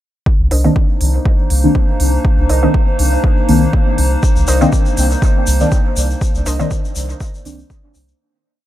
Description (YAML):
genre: dub techno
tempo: 121 BPM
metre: 4/4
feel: swing 54% on 16ths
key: C minor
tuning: A4 = 440 Hz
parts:
  - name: warbly tape-like pad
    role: sustained chords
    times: 0.6-8.2 s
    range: Bb3 to C5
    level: -22 LUFS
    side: equal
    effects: chorus, built-in reverb, sidechain pumping
  - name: electronic kick drum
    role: drums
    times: 0.3-7.8 s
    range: none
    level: -15 LUFS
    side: equal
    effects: none
  - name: soft dub sub bass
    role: bass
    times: 0.4-8.1 s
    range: C2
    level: -15 LUFS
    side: equal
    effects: sidechain pumping
  - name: warbly dusty pluck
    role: riff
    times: 0.5-6.7 s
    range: D4 to Eb5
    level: -26 LUFS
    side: right 2 dB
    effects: chorus, sidechain pumping, dub echo
  - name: electronic hi-hat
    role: drums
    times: 0.5-8.1 s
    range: none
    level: -25 LUFS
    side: right 2 dB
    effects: none
  - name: deep mellow chord stab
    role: stabs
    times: 0.6-7.6 s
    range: Eb3 to D4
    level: -18 LUFS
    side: left 1 dB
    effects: chorus, phaser, sidechain pumping, dub echo
  - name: egg shaker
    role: percussion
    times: 4.2-8.2 s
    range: none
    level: -28 LUFS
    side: left 4 dB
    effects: none
room: digital ambience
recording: none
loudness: -12 LUFS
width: side -13 dB against mid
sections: 0.3-8.2 groove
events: fade-out 5.6-8.2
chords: 0.3 Cm9